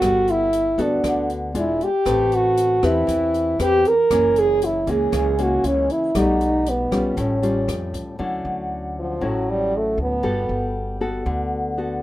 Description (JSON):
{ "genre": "bossa nova", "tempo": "117 BPM", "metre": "4/4", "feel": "straight", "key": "D major from 8.2 s", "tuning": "A4 = 439 Hz", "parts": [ { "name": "warm French horn", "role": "melody", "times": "0.0-10.7 s", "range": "F3 to Bb4", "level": "-19 LUFS", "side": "right 1 dB", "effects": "none" }, { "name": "nylon-string guitar", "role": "accompaniment", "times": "0.0-12.0 s", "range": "F#2 to B4", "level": "-24 LUFS", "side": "left 2 dB", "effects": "none" }, { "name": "upright bass", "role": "bass", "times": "0.0-12.0 s", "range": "E1 to E#2", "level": "-27 LUFS", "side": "equal", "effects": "none" }, { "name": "open jazz drum kit", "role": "drums", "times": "0.0-8.1 s", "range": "hi-hat, kick drum, rim click", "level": "-34 LUFS", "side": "left 1 dB", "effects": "none" } ], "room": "light reverb", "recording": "rough home demo mix", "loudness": "-18 LUFS", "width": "side -14 dB against mid", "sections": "0.0-8.2 A section; 8.2-12.0 B section", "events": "French horn solo 8.2-12.0", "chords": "0.0 Gmaj9; 1.6 E7b9; 2.1 Am9; 4.1 F#7; 6.2 B7b13; 7.2 Aaug7; 8.2 Dmaj9; 10.2 Gmaj9" }